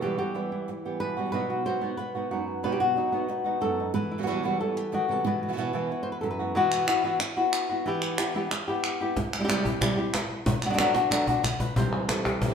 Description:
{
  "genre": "flamenco",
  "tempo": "184 BPM",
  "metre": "4/4",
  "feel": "straight",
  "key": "B phrygian dominant",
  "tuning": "A4 = 441 Hz",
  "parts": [
    { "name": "flamenco guitar", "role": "melody", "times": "0.0-12.5 s", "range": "F#2 to C5", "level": "-27 LUFS", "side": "left 2 dB", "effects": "none" },
    { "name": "flamenco guitar", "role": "stabs", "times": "0.0-6.6, 11.8-12.5 s", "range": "E2 to F#4", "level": "-30 LUFS", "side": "right 4 dB", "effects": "none" },
    { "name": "palmas hand claps", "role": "percussion", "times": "6.7-12.4 s", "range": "none", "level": "-31 LUFS", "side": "right 2 dB", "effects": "none" },
    { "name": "cajon", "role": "percussion", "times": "9.2-12.5 s", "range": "none", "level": "-29 LUFS", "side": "left 2 dB", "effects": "none" }
  ],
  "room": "wet large studio reverb, RT60 1.4 s",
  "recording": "band playing live in one room",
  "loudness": "-25 LUFS",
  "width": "side -7 dB against mid",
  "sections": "0.0-6.6 A section; 6.6-11.8 B section",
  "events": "drum fill 11.0-11.8",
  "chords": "0.0 Emadd9; 1.3 B; 3.9 Emadd9; 5.3 Bsus4; 7.9 Em; 9.2 C; 10.5 D6; 11.8 C",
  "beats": "| 0.03 0.35 0.68 1.01 | 1.33 1.66 1.99 2.31 | 2.64 2.97 3.29 3.62 | 3.95 4.27 4.60 4.92 | 5.25 5.58 5.90 6.23 | 6.55 6.88 7.21 7.53 | 7.86 8.18 8.51 8.83 | 9.16 9.48 9.81 10.14 | 10.46 10.79 11.11 11.44 | 11.77 12.09 12.42"
}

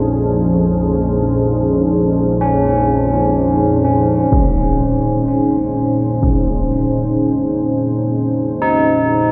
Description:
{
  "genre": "dark ambient drone",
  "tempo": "free time",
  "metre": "none",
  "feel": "none",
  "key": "Bb minor",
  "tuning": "A4 = 440 Hz",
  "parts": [
    { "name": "dark analog pad", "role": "sustained chords", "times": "0.0-9.3 s", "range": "Bb2 to C5", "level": "-18 LUFS", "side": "equal", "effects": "chorus" },
    { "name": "tubular bells", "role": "arpeggios", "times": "0.0-9.3 s", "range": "Db4 to Eb4", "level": "-23 LUFS", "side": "equal", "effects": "delay" },
    { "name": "organ-like drone", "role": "drone", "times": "0.0-9.3 s", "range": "Bb1 to F2", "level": "-23 LUFS", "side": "equal", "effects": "ensemble chorus, built-in reverb" },
    { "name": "impact", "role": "percussion", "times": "4.3-6.4 s", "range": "none", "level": "-22 LUFS", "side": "equal", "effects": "low-pass filter on sfx" }
  ],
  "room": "moderate plate reverb, RT60 3.1 s",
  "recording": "dreamy mix soaked in reverb",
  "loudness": "-16 LUFS",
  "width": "mono",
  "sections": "0.0-4.3 A section; 4.3-9.3 B section",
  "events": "none",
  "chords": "0.0 Bbm7",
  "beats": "free time"
}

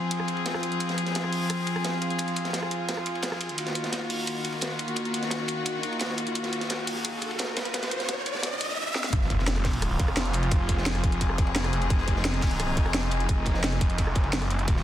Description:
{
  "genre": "dark technical drum and bass",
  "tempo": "173 BPM",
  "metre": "4/4",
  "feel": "straight",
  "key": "F phrygian",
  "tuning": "A4 = 438 Hz",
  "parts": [
    { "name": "warm chamber string section", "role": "sustained chords", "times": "0.0-14.8 s", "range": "Eb3 to Ab4", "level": "-30 LUFS", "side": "left 1 dB", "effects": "sidechain pumping" },
    { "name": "crunchy breakbeat drum kit", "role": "drums", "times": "0.1-14.8 s", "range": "hi-hat, ride cymbal, snare drum", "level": "-35 LUFS", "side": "equal", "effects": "high-pass filter on cymbals, small room ambience, high-pass filter on hats, high-pass filter on snare, high-pass filter on room" },
    { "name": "drum and bass drum kit", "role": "drums", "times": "0.1-14.7 s", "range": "hi-hat, rim click, snare drum", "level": "-31 LUFS", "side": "equal", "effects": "small room ambience" },
    { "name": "riser and impact", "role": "sound effects", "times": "5.7-10.5 s", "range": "none", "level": "-32 LUFS", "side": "equal", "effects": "none" },
    { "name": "snarling distorted saw bass", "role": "bass", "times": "9.1-14.8 s", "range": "Eb1 to Gb1", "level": "-27 LUFS", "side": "equal", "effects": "overdrive, sidechain pumping" },
    { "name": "electronic kick drum", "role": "drums", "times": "9.1-14.7 s", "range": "none", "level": "-25 LUFS", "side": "equal", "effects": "small room ambience" }
  ],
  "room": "light reverb, studio reverb",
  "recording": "dense, heavily limited modern master, high-pass filter",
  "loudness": "-25 LUFS",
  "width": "side -12 dB against mid",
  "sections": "0.0-9.1 A section; 9.1-14.8 B section",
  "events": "build-up 0.0-9.1; riser 5.7-9.1; drum fill 9.0; drop 9.1-14.8; impact 9.1-10.5",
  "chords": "0.0 Fm; 3.6 Ebmadd9; 9.1 Fm",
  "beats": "0.11 0.46 | 0.81 1.15 1.50 1.84 | 2.19 2.54 2.89 3.23 | 3.58 3.93 4.27 4.62 | 4.97 5.31 5.66 6.01 | 6.35 6.70 7.05 7.39 | 7.74 8.09 8.44 8.78 | 9.13 9.47 9.82 10.17 | 10.52 10.86 11.21 11.56 | 11.90 12.25 12.60 12.94 | 13.29 13.64 13.98 14.33 | 14.68"
}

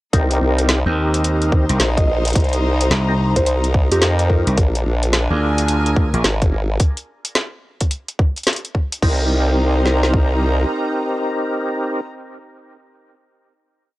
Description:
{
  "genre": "glitch hop",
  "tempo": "108 BPM",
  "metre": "4/4",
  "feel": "swing 63% on 16ths",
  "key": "C minor",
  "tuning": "A4 = 440 Hz",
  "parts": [
    { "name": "percussive tonewheel organ", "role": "stabs", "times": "0.1-12.0 s", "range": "C4 to Bb4", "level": "-22 LUFS", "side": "equal", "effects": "overdrive, chorus vibrato, slow rotary speaker, vintage 12-bit sampler grit, sidechain pumping, tape echo" },
    { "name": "formant-sweep wobble bass", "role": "bass", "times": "0.1-10.7 s", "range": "Ab1 to F2", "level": "-17 LUFS", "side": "equal", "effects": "chorus, overdrive" },
    { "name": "drum and bass drum kit", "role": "drums", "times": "0.1-10.3 s", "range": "kick drum, snare drum", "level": "-17 LUFS", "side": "equal", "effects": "none" },
    { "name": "drum and bass drum kit", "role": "drums", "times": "0.1-9.2 s", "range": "crash cymbal, hi-hat, snare drum", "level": "-20 LUFS", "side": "equal", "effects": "none" },
    { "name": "dark studio string section", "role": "texture", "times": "0.1-12.0 s", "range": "D4 to Bb5", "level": "-26 LUFS", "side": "left 1 dB", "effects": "sidechain pumping" },
    { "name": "gritty slap bass", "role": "bass", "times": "0.9-6.2 s", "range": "Bb1 to Eb2", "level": "-18 LUFS", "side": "equal", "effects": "overdrive" },
    { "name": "woody wave-folded pluck", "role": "melody", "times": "2.0-4.6 s", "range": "G4 to Eb5", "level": "-23 LUFS", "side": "right 1 dB", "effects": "chorus, tape echo" }
  ],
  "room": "little or no reverb",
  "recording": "dry, gritty hardware recording, cassette tape",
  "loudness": "-15 LUFS",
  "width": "side -18 dB against mid",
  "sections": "0.1-9.0 drop; 9.0-11.2 final chord",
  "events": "drop 0.1-9.0",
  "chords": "0.1 Cm7; 4.6 Bb7; 9.0 Cm7",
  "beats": "| 0.13 0.69 1.25 1.80 | 2.36 2.91 3.47 4.02 | 4.58 5.13 5.69 6.25 | 6.80 7.36 7.91 8.47 | 9.02 9.58 10.13 10.69"
}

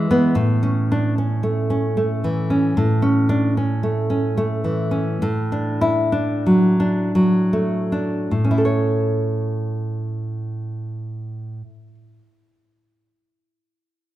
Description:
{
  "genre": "romantic piece for solo classical guitar",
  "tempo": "50-77 BPM",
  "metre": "3/4",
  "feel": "rubato",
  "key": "A major",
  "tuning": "A4 = 440 Hz",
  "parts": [
    { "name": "nylon-string guitar", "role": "solo", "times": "0.0-11.9 s", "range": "A2 to C#5", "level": "-18 LUFS", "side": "equal", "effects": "none" }
  ],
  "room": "moderate recital hall reverb, RT60 1.6 s",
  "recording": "minimal, uncompressed stereo recording",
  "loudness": "-18 LUFS",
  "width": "side -14 dB against mid",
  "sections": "0.0-2.8 A section; 2.8-8.3 B section; 8.3-11.8 C section",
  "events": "slowing down 1.6-8.3",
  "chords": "0.4 A; 5.2 D/A; 8.3 A",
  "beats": "| 0.36 1.19 1.99 | 2.79 3.58 4.37 | 5.22 6.13 7.16 | 8.32 9.49 10.67"
}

